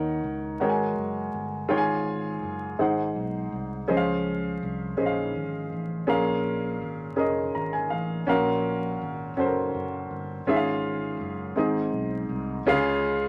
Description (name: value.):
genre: slow gospel.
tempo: 55 BPM (dotted quarters).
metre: 6/8.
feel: straight.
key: Db major.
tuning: A4 = 443 Hz.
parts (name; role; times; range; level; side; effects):
warm upright piano; accompaniment; 0.0-13.3 s; Ab2 to Bb5; -28 LUFS; equal; none.
fretless electric bass; bass; 0.0-13.3 s; F1 to Eb2; -36 LUFS; equal; none.
room: moderate studio reverb, RT60 0.5 s.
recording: vinyl crackle.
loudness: -27 LUFS.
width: mono.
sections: 0.0-12.7 A section.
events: upright piano fill 7.2-8.3.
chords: 0.0 Ebm7; 0.6 Ab9sus4; 1.7 Db/Ab; 2.8 Ab7; 3.9 Dbmaj7; 6.1 Bbm7; 8.3 Gbmaj7; 10.5 Db/Ab; 11.6 Ab; 12.7 Db.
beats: 0.60 | 1.70 2.79 | 3.89 4.99 | 6.08 7.18 | 8.28 9.37 | 10.47 11.56 | 12.66.